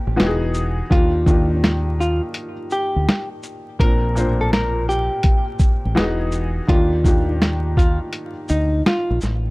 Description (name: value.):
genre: lo-fi hip hop.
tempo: 83 BPM.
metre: 4/4.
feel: swing 66% on 16ths.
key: unclear.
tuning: A4 = 440 Hz.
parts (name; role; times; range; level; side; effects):
felt-muted upright piano; accompaniment; 0.0-9.5 s; Bb2 to C5; -24 LUFS; left 1 dB; cassette tape, low-pass filter, plate reverb.
deep dub fingered electric bass; bass; 0.1-9.5 s; E1 to Eb2; -21 LUFS; equal; none.
lo-fi sampler-style drum kit; drums; 0.2-9.4 s; hi-hat, kick drum, shaker, snare drum; -17 LUFS; equal; none.
hollow-body jazz guitar; melody; 0.9-9.2 s; Eb4 to Bb4; -24 LUFS; equal; low-pass filter, plate reverb, tape echo.
room: light reverb.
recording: vinyl crackle.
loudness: -16 LUFS.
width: side -23 dB against mid.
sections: 0.0-9.5 A section.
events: none.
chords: 0.2 Emaj9; 0.9 Ebmaj9; 3.8 Bb; 6.0 Emaj9; 6.7 Ebmaj9.